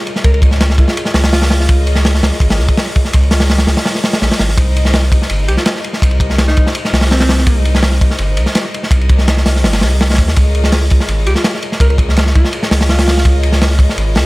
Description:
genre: drum and bass, jungle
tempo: 166 BPM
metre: 4/4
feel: straight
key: unclear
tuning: A4 = 440 Hz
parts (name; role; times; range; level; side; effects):
- dark chamber string section; sustained chords; 0.0-14.3 s; Eb4 to Eb5; -24 LUFS; left 2 dB; vintage 12-bit sampler grit
- crunchy breakbeat drum kit; drums; 0.1-14.2 s; hi-hat, kick drum, ride cymbal, snare drum; -13 LUFS; equal; none
- breathy alto saxophone; melody; 0.2-1.8, 5.5-7.7, 11.3-13.4 s; C4 to Bb4; -22 LUFS; equal; vintage 12-bit sampler grit, dub echo
- saturated sub bass; bass; 0.2-14.2 s; G1 to Eb2; -13 LUFS; equal; none
room: small room ambience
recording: none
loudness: -10 LUFS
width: side -21 dB against mid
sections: 0.0-14.3 A section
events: none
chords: 0.0 Db69; 4.6 Cm7; 10.4 Db69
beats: | 0.24 0.60 0.96 1.32 | 1.69 2.05 2.41 2.77 | 3.13 3.49 3.85 4.22 | 4.58 4.94 5.30 5.66 | 6.02 6.38 6.75 7.11 | 7.47 7.83 8.19 8.55 | 8.92 9.28 9.64 10.00 | 10.36 10.72 11.08 11.45 | 11.81 12.17 12.53 12.89 | 13.25 13.61 13.98

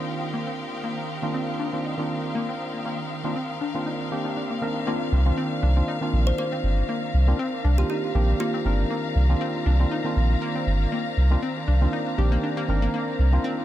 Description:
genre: deep house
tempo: 119 BPM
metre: 4/4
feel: swing 54% on 16ths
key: C minor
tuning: A4 = 438 Hz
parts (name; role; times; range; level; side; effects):
- hollow soft pad; sustained chords; 0.0-13.6 s; Eb3 to Eb6; -36 LUFS; right 3 dB; chorus
- percussive organ stab; stabs; 0.0-13.6 s; Eb3 to Bb4; -28 LUFS; equal; chorus, dub echo
- clear chamber violin section; texture; 0.0-4.9 s; G4 to G5; -39 LUFS; right 2 dB; none
- warm studio string section; texture; 0.0-13.6 s; Eb3 to C6; -34 LUFS; left 4 dB; none
- analog pluck; arpeggios; 0.3-13.5 s; Bb3 to G4; -33 LUFS; left 2 dB; chorus, dub echo
- warm sub bass; bass; 5.1-13.4 s; G1 to C2; -19 LUFS; equal; none
- kalimba; melody; 6.3-8.8 s; F4 to C5; -34 LUFS; right 1 dB; dub echo
room: light reverb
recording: echo-heavy mix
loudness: -22 LUFS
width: side -13 dB against mid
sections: 0.0-4.9 A section; 4.9-13.6 B section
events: drop 4.9-13.6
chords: 0.0 Cm11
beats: 0.33 | 0.84 1.34 1.85 2.35 | 2.85 3.36 3.86 4.37 | 4.87 5.38 5.88 6.38 | 6.89 7.39 7.90 8.40 | 8.90 9.41 9.91 10.42 | 10.92 11.43 11.93 12.44 | 12.94 13.44

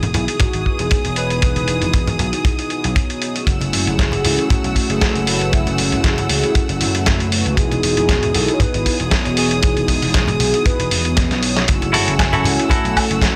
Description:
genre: nu-disco, nu disco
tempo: 117 BPM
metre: 4/4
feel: swing 54% on 16ths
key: unclear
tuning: A4 = 440 Hz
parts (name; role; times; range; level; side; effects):
- warm analog pad; accompaniment; 0.0-13.4 s; A3 to G#5; -24 LUFS; equal; chorus, cassette tape, sidechain pumping
- clear studio string section; sustained chords; 0.0-13.4 s; A3 to E6; -29 LUFS; equal; sidechain pumping
- vintage slap bass; bass; 0.0-13.2 s; E1 to C#2; -24 LUFS; equal; tube saturation
- dusty soul sampler-style drum kit; drums; 0.0-13.3 s; hi-hat, snare drum, woodblock; -24 LUFS; equal; studio reverb
- congas; percussion; 0.0-12.8 s; none; -26 LUFS; equal; none
- soft octave-layered synth lead; melody; 0.1-11.4 s; E4 to C#5; -27 LUFS; equal; chorus, tape echo
- kick drum; drums; 0.4-13.3 s; none; -20 LUFS; equal; studio reverb
- semi-hollow electric guitar; riff; 11.9-13.0 s; E4 to A4; -23 LUFS; equal; subtle chorus
room: small room reverb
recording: dry, gritty hardware recording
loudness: -17 LUFS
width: mono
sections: 0.0-13.4 A section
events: drum fill 11.2-11.7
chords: 0.0 Emaj7; 3.5 F#m7; 7.6 Emaj7; 11.7 F#m7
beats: 0.40 0.91 | 1.43 1.94 2.45 2.96 | 3.48 3.99 4.50 5.01 | 5.53 6.04 6.55 7.07 | 7.58 8.09 8.61 9.12 | 9.63 10.14 10.66 11.17 | 11.68 12.19 12.71 13.22

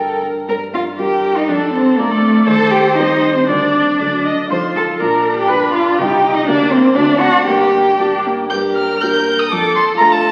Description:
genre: quick classical-period movement for piano quartet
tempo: 120 BPM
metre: 2/4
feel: rubato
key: G minor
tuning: A4 = 440 Hz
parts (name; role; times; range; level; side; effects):
- warm violin; melody; 0.0-10.3 s; A4 to G6; -21 LUFS; equal; none
- rich cello; second line; 0.0-10.3 s; A3 to C5; -17 LUFS; equal; none
- dark baby grand piano; accompaniment; 0.0-10.3 s; C2 to C5; -25 LUFS; equal; none
- rich viola; accompaniment; 0.0-10.3 s; Bb3 to Eb5; -22 LUFS; equal; none
room: wet recital hall reverb, RT60 1.7 s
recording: very old 78 rpm record, vinyl crackle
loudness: -14 LUFS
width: mono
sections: 0.5-8.5 A section; 8.5-10.3 A section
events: none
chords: 0.5 Gm; 1.5 Dm/F; 2.5 Cm/Eb; 3.5 Gm/D; 4.0 D; 4.5 F7; 5.0 Bb; 5.5 G7; 6.0 Cm; 6.5 Gm/D; 7.0 D; 7.5 Gm; 9.5 Dm/F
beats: | 0.49 0.99 | 1.50 1.99 | 2.48 2.97 | 3.48 3.99 | 4.50 5.00 | 5.49 5.98 | 6.47 6.97 | 7.47 7.99 | 8.52 9.02 | 9.51 10.00

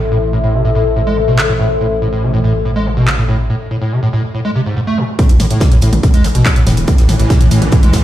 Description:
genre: driving peak-time techno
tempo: 142 BPM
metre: 4/4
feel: straight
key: A harmonic minor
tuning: A4 = 440 Hz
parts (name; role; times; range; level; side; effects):
- detuned saw bass; bass; 0.0-7.9 s; E1 to A2; -18 LUFS; equal; sidechain pumping
- deep dark ambient pad; texture; 0.0-3.5 s; A4 to C6; -19 LUFS; left 4 dB; chorus, built-in reverb, sidechain pumping
- overdriven acid bass; riff; 0.1-8.0 s; G#2 to A3; -15 LUFS; equal; ensemble chorus, sidechain pumping, dub echo
- techno drum kit; drums; 1.4-8.0 s; handclaps, hi-hat, toms; -19 LUFS; equal; none
- swarming drone; drone; 5.8-8.0 s; A2 to E3; -20 LUFS; equal; built-in reverb, sidechain pumping
- electronic kick drum; drums; 5.2-8.0 s; none; -10 LUFS; equal; none
- natural country drum kit; drums; 5.2-8.0 s; hi-hat, snare drum; -29 LUFS; left 2 dB; sidechain pumping on hats, high-pass filter on hats, high-pass filter on snare, high-pass filter on room
room: moderate digital room reverb, RT60 1.1 s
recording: played on a big sound system in a bare room, large studio reverb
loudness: -11 LUFS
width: side -13 dB against mid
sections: 0.0-5.2 A section; 5.2-8.0 B section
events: break 3.5-5.2; drop 5.2-8.0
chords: 0.0 Am; 5.2 A5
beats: | 0.12 0.54 0.96 1.39 | 1.81 2.23 2.65 3.08 | 3.50 3.92 4.34 4.77 | 5.19 5.61 6.03 6.46 | 6.88 7.30 7.72

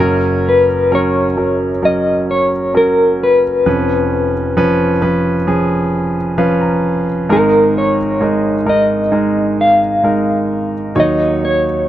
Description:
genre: acoustic folk-pop ballad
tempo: 66 BPM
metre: 4/4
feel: straight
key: F# major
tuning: A4 = 437 Hz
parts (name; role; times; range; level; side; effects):
- clear grand piano; accompaniment; 0.0-11.9 s; E#1 to A#5; -14 LUFS; right 1 dB; none
- mellow electric guitar; melody; 0.5-11.9 s; A#4 to E#5; -14 LUFS; left 1 dB; tremolo
room: light reverb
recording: dry, close 1970s-style studio recording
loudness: -12 LUFS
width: side -12 dB against mid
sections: 0.0-11.9 A section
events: none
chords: 0.0 F#; 3.7 C#7/E#; 7.3 G#sus2; 11.0 D#m7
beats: 0.91 1.82 2.74 | 3.66 4.57 5.48 6.39 | 7.30 8.21 9.12 10.04 | 10.96 11.87

